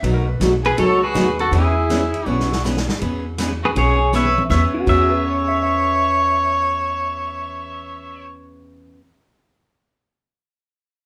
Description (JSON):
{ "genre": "country, western swing", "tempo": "161 BPM", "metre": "4/4", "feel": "swing 64% on 8ths", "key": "E major", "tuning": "A4 = 440 Hz", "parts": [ { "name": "clean lap steel guitar", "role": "second line", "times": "0.0-0.5, 4.7-8.2 s", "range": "F#4 to E5", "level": "-28 LUFS", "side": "equal", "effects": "none" }, { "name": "picked steel-string acoustic guitar", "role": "accompaniment", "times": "0.0-9.0 s", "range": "B2 to G#4", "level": "-26 LUFS", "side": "equal", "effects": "none" }, { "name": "upright bass", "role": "bass", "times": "0.0-8.9 s", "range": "B1 to E2", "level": "-25 LUFS", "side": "equal", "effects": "none" }, { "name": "vintage drum kit", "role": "drums", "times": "0.0-5.0 s", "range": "crash cymbal, hi-hat, kick drum, ride cymbal, snare drum, toms", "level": "-29 LUFS", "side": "equal", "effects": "none" }, { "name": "clear fiddle", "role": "second line", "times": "0.6-8.3 s", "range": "E4 to C#5", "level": "-24 LUFS", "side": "equal", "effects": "none" }, { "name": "pedal steel guitar", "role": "melody", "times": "0.7-8.3 s", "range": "E4 to E5", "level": "-24 LUFS", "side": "equal", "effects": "none" } ], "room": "wet studio reverb, RT60 0.5 s", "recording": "band playing live in one room", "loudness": "-18 LUFS", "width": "mono", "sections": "0.0-3.0 A section; 3.0-4.5 B section; 4.5-7.5 C section", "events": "drum fill 2.3-3.0, 4.1-4.5", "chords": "0.0 B7; 1.5 E6", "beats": "| 0.03 0.40 0.78 1.15 | 1.52 1.89 2.26 2.64 | 3.01 3.38 3.75 4.13 | 4.50 4.87 5.25 5.62 | 5.99 6.37 6.74 7.11" }